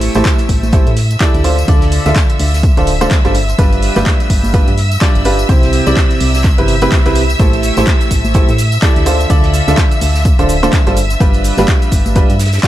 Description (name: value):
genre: piano house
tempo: 126 BPM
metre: 4/4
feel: swing 58% on 16ths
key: unclear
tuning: A4 = 439 Hz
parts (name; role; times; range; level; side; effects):
- clear symphonic violin section; sustained chords; 0.0-12.7 s; E5 to E6; -22 LUFS; equal; sidechain pumping
- bright baby grand piano; riff; 0.0-12.7 s; C3 to E5; -16 LUFS; right 1 dB; sidechain pumping, dub echo
- solid FM bass; bass; 0.0-12.6 s; D1 to A2; -15 LUFS; equal; sidechain pumping
- damped 70s drum kit; drums; 0.0-12.7 s; hi-hat, snare drum; -30 LUFS; right 2 dB; none
- punchy analog drum machine; drums; 0.0-12.7 s; handclaps, hi-hat, shaker; -22 LUFS; equal; none
- tambourine and congas; percussion; 0.1-12.7 s; none; -25 LUFS; equal; none
- electronic kick drum; drums; 0.3-12.7 s; none; -12 LUFS; equal; none
room: studio ambience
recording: dark, warm production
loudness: -9 LUFS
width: side -13 dB against mid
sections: 0.0-12.7 A section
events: none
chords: 0.0 Am7; 1.4 Dm7; 3.3 G7; 5.5 Cmaj7; 7.4 Am7; 9.1 Dm7; 11.0 G7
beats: 0.25 0.73 1.21 | 1.68 2.16 2.63 3.11 | 3.59 4.06 4.54 5.01 | 5.49 5.97 6.44 6.92 | 7.40 7.87 8.35 8.82 | 9.30 9.78 10.25 10.73 | 11.21 11.68 12.16 12.63